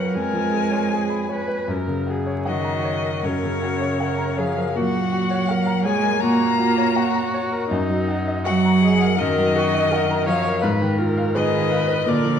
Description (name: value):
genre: classical, slow romantic movement for piano quartet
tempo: 81 BPM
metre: 4/4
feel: uneven beats, rubato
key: F# major, Eb minor from 7.7 s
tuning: A4 = 442 Hz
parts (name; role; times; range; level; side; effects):
- rich violin; melody; 0.0-12.4 s; C#5 to A#5; -25 LUFS; left 8 dB; none
- rich cello; second line; 0.0-12.4 s; C#3 to A#3; -23 LUFS; right 4 dB; none
- clear baby grand piano; accompaniment; 0.0-12.4 s; E#2 to B5; -23 LUFS; left 2 dB; none
- rich viola; accompaniment; 0.0-12.4 s; Eb4 to Db5; -27 LUFS; right 2 dB; none
room: moderate scoring stage reverb, RT60 1.7 s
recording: dark, warm production, vinyl crackle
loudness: -18 LUFS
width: side -8 dB against mid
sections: 0.0-12.4 A section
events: none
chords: 0.0 C#7/E#; 1.7 F#; 4.8 F#/A#; 7.7 Ebm/Gb; 10.6 Fm7b5/Ab